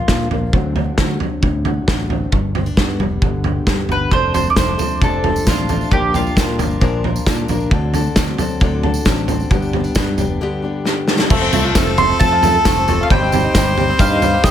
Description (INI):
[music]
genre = indie folk with a building arrangement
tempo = 134 BPM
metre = 4/4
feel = straight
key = F mixolydian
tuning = A4 = 440 Hz
[part]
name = mandolin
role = melody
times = 0.0-0.3, 3.9-6.6, 12.0-14.5 s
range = F4 to C6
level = -19 LUFS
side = right 1 dB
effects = tape echo
[part]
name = fingerpicked steel-string acoustic guitar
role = accompaniment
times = 0.0-11.3 s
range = F2 to G4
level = -25 LUFS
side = left 3 dB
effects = none
[part]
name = fingered electric bass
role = bass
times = 0.1-14.5 s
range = F1 to Bb2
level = -21 LUFS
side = equal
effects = none
[part]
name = loose indie drum kit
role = drums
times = 0.1-14.5 s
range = crash cymbal, kick drum, snare drum, toms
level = -17 LUFS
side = equal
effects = none
[part]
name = picked old ladder-braced acoustic guitar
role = accompaniment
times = 4.1-14.5 s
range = G2 to Bb4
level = -24 LUFS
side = left 5 dB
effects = none
[part]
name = tambourine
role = percussion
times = 4.3-14.5 s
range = none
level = -32 LUFS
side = right 5 dB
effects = none
[part]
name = clear fiddle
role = second line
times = 11.3-14.5 s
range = A4 to C5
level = -21 LUFS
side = left 2 dB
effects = none
[part]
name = open-back banjo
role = arpeggios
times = 11.3-14.5 s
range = G3 to A4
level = -23 LUFS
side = right 5 dB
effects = none
[sound]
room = light reverb, small room ambience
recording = none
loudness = -14 LUFS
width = side -10 dB against mid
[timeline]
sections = 0.0-11.3 A section; 11.3-14.5 B section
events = drum fill 10.9-11.3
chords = 0.0 Bb; 0.5 D7; 2.3 G; 4.1 F6; 5.9 Bb; 7.7 D7; 9.5 G; 11.3 F; 13.1 Cm/G